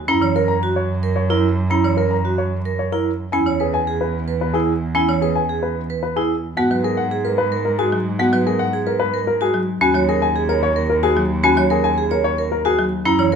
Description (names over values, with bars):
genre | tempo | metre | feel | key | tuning
classical, minimalist pattern music | 111 BPM | 3/4 | straight | unclear | A4 = 442 Hz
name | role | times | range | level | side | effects
warm grand piano | melody | 0.1-13.4 s | G#4 to A#5 | -21 LUFS | left 6 dB | none
folk marimba with hard mallets | accompaniment | 0.1-13.4 s | E3 to C#4 | -23 LUFS | left 1 dB | none
vibraphone with medium hard mallets | arpeggios | 0.1-13.4 s | E4 to C#5 | -21 LUFS | right 6 dB | none
rich cello | bass | 0.1-13.4 s | D#2 to G#2 | -23 LUFS | right 2 dB | none
room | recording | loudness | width
light reverb | none | -16 LUFS | side -6 dB against mid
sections
0.0-13.4 A section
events
none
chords
0.1 F#7; 3.3 E; 6.6 G#m9; 9.8 D#m7